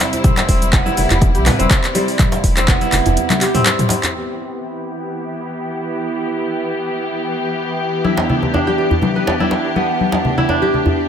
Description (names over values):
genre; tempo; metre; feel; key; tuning
afro house; 123 BPM; 4/4; swing 54% on 16ths; E minor; A4 = 440 Hz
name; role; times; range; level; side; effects
clear symphonic string section; sustained chords; 0.0-11.1 s; C3 to G4; -21 LUFS; equal; sidechain pumping, low-pass filter
kora; arpeggios; 0.0-11.1 s; G3 to D5; -20 LUFS; right 1 dB; sidechain pumping, digital delay
deep house drum kit; drums; 0.0-4.1 s; cabasa, handclaps, hi-hat, toms; -19 LUFS; equal; overdrive, low-pass filter on hats, low-pass filter on perc, low-pass filter on snare, low-pass filter on toms
congas; percussion; 0.0-4.0, 8.0-10.8 s; none; -22 LUFS; left 4 dB; none
djembe; percussion; 0.0-4.1, 8.2-11.0 s; none; -22 LUFS; right 2 dB; none
electronic kick drum; drums; 0.2-2.8 s; none; -15 LUFS; equal; overdrive
warm sub bass; bass; 0.5-3.2 s; E1 to B1; -19 LUFS; equal; sidechain pumping
room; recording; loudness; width
light reverb; none; -14 LUFS; side -8 dB against mid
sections
0.0-4.1 A section; 4.1-11.1 B section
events
kick drops out 3.2-4.1; filter sweep on string section 4.1-11.1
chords
0.0 C/E